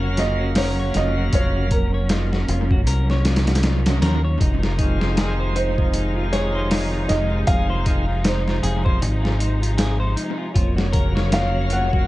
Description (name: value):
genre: trip hop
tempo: 78 BPM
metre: 4/4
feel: swing 58% on 16ths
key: F phrygian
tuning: A4 = 439 Hz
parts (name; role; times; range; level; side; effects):
- bright tonewheel organ; accompaniment; 0.0-12.1 s; C3 to F5; -29 LUFS; equal; overdrive, slow rotary speaker, harmonic tremolo, tape echo
- rich studio string section; sustained chords; 0.0-12.1 s; C3 to Db5; -28 LUFS; equal; vintage 12-bit sampler grit
- clean electric guitar; arpeggios; 0.0-12.0 s; Eb4 to Db5; -30 LUFS; left 2 dB; tape echo
- deep dub fingered electric bass; bass; 0.0-12.1 s; F1 to Eb2; -22 LUFS; equal; none
- felt-muted upright piano; melody; 0.2-12.1 s; Bb4 to Gb5; -28 LUFS; right 2 dB; tape echo
- boom bap sampler-style drum kit; drums; 0.2-12.1 s; hi-hat, kick drum, snare drum; -22 LUFS; equal; analog delay
room: little or no reverb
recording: echo-heavy mix, vinyl crackle, nothing above 10.9 kHz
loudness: -18 LUFS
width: side -17 dB against mid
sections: 0.0-12.1 A section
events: none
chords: 0.0 Gbmaj7/F; 4.4 Fm7; 10.6 Gbmaj7/F